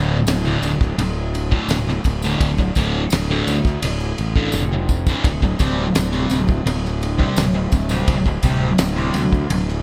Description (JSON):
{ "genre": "psychedelic rock", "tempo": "84 BPM", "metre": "4/4", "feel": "straight", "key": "D minor", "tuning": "A4 = 437 Hz", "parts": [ { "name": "thick fuzz guitar", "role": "riff", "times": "0.0-9.5 s", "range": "D2 to C4", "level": "-24 LUFS", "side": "equal", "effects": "distortion, phaser, analog delay" }, { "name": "fuzz fingered electric bass", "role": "bass", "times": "0.0-9.8 s", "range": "D1 to D2", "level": "-24 LUFS", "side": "equal", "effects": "overdrive" }, { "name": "damped 70s drum kit", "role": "drums", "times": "0.3-9.8 s", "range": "kick drum, ride cymbal, snare drum, toms", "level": "-24 LUFS", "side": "equal", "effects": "analog delay" }, { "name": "tambourine", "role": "percussion", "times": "0.3-9.4 s", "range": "none", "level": "-39 LUFS", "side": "equal", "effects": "none" } ], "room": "little or no reverb", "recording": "echo-heavy mix", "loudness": "-19 LUFS", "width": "mono", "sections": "0.0-9.8 A section", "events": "drum fill 4.5-5.3", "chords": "0.0 D5; 5.3 C5/D", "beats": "0.27 0.99 1.70 | 2.41 3.12 3.83 4.54 | 5.25 5.96 6.67 7.38 | 8.09 8.80 9.51" }